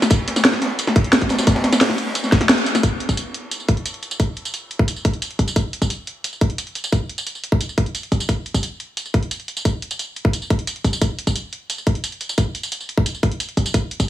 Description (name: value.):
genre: drum and bass.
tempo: 176 BPM.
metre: 4/4.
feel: straight.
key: none.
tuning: none.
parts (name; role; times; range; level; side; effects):
crunchy breakbeat drum kit; drums; 0.0-2.8 s; hi-hat, ride cymbal, snare drum; -24 LUFS; equal; high-pass filter on cymbals, high-pass filter on hats, high-pass filter on snare, high-pass filter on room.
drum and bass drum kit; drums; 0.0-14.1 s; hi-hat, snare drum, tambourine; -21 LUFS; equal; none.
electronic kick drum; drums; 0.1-14.1 s; none; -17 LUFS; equal; none.
room: light reverb, small room ambience.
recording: heavily compressed radio sound.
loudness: -18 LUFS.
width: side -13 dB against mid.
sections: 0.0-2.8 A section; 2.8-14.1 B section.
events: drop 0.0-2.8; kick drops out 2.5-2.8; band accent 2.5.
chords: none.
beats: | 0.11 0.45 0.79 1.13 | 1.47 1.81 2.15 2.49 | 2.83 3.17 3.52 3.86 | 4.20 4.54 4.88 5.22 | 5.56 5.90 6.24 6.58 | 6.92 7.27 7.61 7.95 | 8.29 8.63 8.97 9.31 | 9.65 9.99 10.33 10.68 | 11.02 11.36 11.70 12.04 | 12.38 12.72 13.06 13.40 | 13.74.